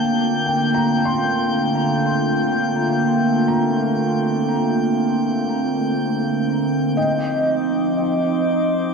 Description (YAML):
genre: ambient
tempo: 60 BPM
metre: 4/4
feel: straight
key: unclear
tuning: A4 = 441 Hz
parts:
  - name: warbly tape-like pad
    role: sustained chords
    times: 0.0-8.9 s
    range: D3 to C5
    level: -18 LUFS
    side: equal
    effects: chorus, built-in reverb
  - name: felt-muted upright piano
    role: arpeggios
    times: 0.0-8.9 s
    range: G5 to C6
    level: -31 LUFS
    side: left 1 dB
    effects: dub echo
  - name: drifting glass-harmonics texture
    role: texture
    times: 0.0-8.9 s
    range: C5 to G6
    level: -25 LUFS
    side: right 1 dB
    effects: chorus, built-in reverb
  - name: warm velvety synth lead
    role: melody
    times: 7.0-8.9 s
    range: Eb5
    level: -21 LUFS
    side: left 1 dB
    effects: chorus, tremolo, dub echo
room: wet spring reverb, RT60 2.8 s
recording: echo-heavy mix, cassette tape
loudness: -17 LUFS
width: side -5 dB against mid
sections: 0.0-8.9 A section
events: none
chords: 0.0 Bbmaj7/D; 7.0 Fsus2